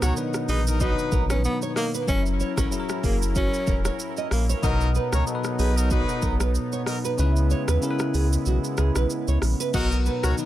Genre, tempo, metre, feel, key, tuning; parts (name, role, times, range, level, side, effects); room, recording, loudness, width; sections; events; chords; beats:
afrobeats; 94 BPM; 4/4; swing 55% on 16ths; B major; A4 = 438 Hz
breathy tenor saxophone; melody; 0.0-4.5, 9.7-10.4 s; A#3 to F#4; -30 LUFS; equal; ping-pong delay
clear horn section; second line; 0.0-10.3 s; F#3 to C#5; -31 LUFS; left 2 dB
bell-like tine electric piano; accompaniment; 0.0-10.5 s; B2 to B4; -29 LUFS; left 4 dB; phaser
warm analog pad; sustained chords; 0.0-10.5 s; C#3 to A#4; -32 LUFS; right 3 dB; chorus
nylon-string guitar; riff; 0.0-10.3 s; F#4 to E5; -33 LUFS; right 6 dB; ping-pong delay
warm sub bass; bass; 0.0-10.3 s; E1 to D#2; -23 LUFS; equal
afro-pop drum kit; drums; 0.0-10.5 s; crash cymbal, hi-hat, kick drum, rim click, shaker; -28 LUFS; equal
little or no reverb; -21 LUFS; side -13 dB against mid
0.0-9.7 A section
kick muted 7.2-9.7
0.0 Bmaj7; 2.1 F#7; 4.6 Bmaj7; 7.2 C#m7; 9.7 Bmaj7
0.17 0.80 1.44 | 2.08 2.72 3.36 4.00 | 4.63 5.27 5.91 6.55 | 7.19 7.82 8.46 9.10 | 9.74 10.38